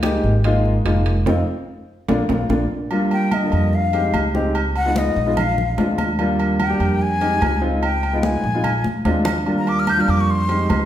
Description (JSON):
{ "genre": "Afro-Cuban jazz", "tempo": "146 BPM", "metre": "4/4", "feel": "straight", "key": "Eb major", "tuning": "A4 = 440 Hz", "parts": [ { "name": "dark grand piano", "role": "accompaniment", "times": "0.0-10.8 s", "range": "D3 to G4", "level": "-21 LUFS", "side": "equal", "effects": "none" }, { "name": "upright bass", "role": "bass", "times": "0.0-10.9 s", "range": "F1 to F2", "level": "-22 LUFS", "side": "right 1 dB", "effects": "none" }, { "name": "congas", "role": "percussion", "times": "0.0-10.9 s", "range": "none", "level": "-26 LUFS", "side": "left 1 dB", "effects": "none" }, { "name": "timbales and agogo bells", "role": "percussion", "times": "0.0-10.9 s", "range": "none", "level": "-26 LUFS", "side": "right 3 dB", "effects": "none" }, { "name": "breathy silver concert flute", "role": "melody", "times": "3.1-10.9 s", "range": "Eb5 to G6", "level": "-23 LUFS", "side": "left 3 dB", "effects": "none" } ], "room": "wet large studio reverb, RT60 1.2 s", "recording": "heard from further back in the room", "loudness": "-16 LUFS", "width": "side -11 dB against mid", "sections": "0.0-2.9 A section; 2.9-10.9 B section", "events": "band accent 1.3-2.9; drum fill 2.3-2.9, 8.9-9.5; flute solo 2.9-10.9", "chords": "0.0 Db69; 1.3 F5; 2.1 Bb; 2.9 Ebmaj7; 3.7 Fm7; 4.5 Db7; 5.4 Bb7; 6.2 Ebmaj7; 7.0 Fm7; 7.8 Db7; 8.6 Bb7; 9.5 Ebmaj7; 10.3 Fm7", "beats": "0.03 0.44 0.85 | 1.26 1.68 2.08 2.50 | 2.91 3.32 3.73 4.14 | 4.55 4.96 5.37 5.78 | 6.19 6.60 7.01 7.42 | 7.83 8.24 8.65 9.06 | 9.47 9.88 10.29 10.70" }